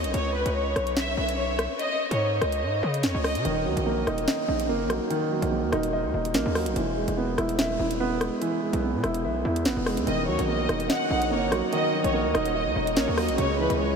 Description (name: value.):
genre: hip hop, drill.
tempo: 145 BPM.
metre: 4/4.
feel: half-time.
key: Eb phrygian.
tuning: A4 = 441 Hz.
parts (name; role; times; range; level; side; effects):
rich studio violin section; melody; 0.0-3.4, 10.1-14.0 s; Cb5 to Gb5; -28 LUFS; left 1 dB; tape echo.
distorted 808-style bass; bass; 0.0-14.0 s; Eb1 to Db3; -30 LUFS; left 1 dB; distortion.
drill drum kit; drums; 0.0-13.8 s; hi-hat, rim click, snare drum; -30 LUFS; left 1 dB; none.
dark concert grand piano; accompaniment; 3.4-14.0 s; Db3 to E5; -26 LUFS; right 2 dB; none.
room: wet huge ambient reverb, RT60 7.0 s.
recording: dreamy mix soaked in reverb.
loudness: -23 LUFS.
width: side -6 dB against mid.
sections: 0.0-14.0 A section.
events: none.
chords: 0.1 Db5; 3.5 Ebm; 6.8 E; 10.1 Ebm; 13.4 Dbm.